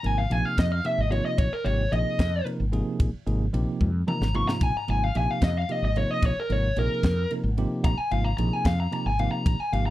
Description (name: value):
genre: electric jazz fusion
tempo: 74 BPM (dotted quarters)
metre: 6/8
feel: straight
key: unclear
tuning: A4 = 440 Hz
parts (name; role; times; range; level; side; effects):
- dark smooth lead guitar; melody; 0.0-9.9 s; Bb4 to Db6; -28 LUFS; left 1 dB; overdrive, slapback echo
- bell-like tine electric piano; accompaniment; 0.0-9.9 s; C3 to Bb4; -30 LUFS; right 2 dB; medium stereo tremolo
- mellow fretless electric bass; bass; 0.0-9.9 s; Ab1 to F2; -26 LUFS; equal; analog chorus
- crisp fusion drum kit; drums; 0.0-9.9 s; kick drum, ride cymbal, snare drum, toms; -25 LUFS; equal; none
room: little or no reverb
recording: dry, close 1970s-style studio recording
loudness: -23 LUFS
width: side -15 dB against mid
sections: 0.0-9.9 A section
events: lead electric guitar solo 0.0-9.9; drum fill 3.8-4.6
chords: 0.0 Abmaj7